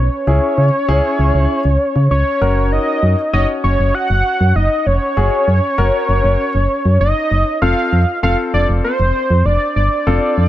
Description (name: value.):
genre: synth-pop.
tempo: 98 BPM.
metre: 4/4.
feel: straight.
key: F# major.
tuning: A4 = 441 Hz.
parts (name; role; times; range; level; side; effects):
wide unison lead; melody; 0.0-10.5 s; C5 to F#5; -16 LUFS; equal; digital delay.
solid FM bass; bass; 0.0-10.5 s; E#1 to C#3; -14 LUFS; equal; none.
warm concert grand piano; accompaniment; 0.3-10.4 s; C4 to C#5; -21 LUFS; left 2 dB; none.
room: light reverb, studio ambience.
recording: none.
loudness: -13 LUFS.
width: side -13 dB against mid.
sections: 0.0-10.5 A section.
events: none.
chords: 0.0 C#m; 2.4 F#; 7.6 F.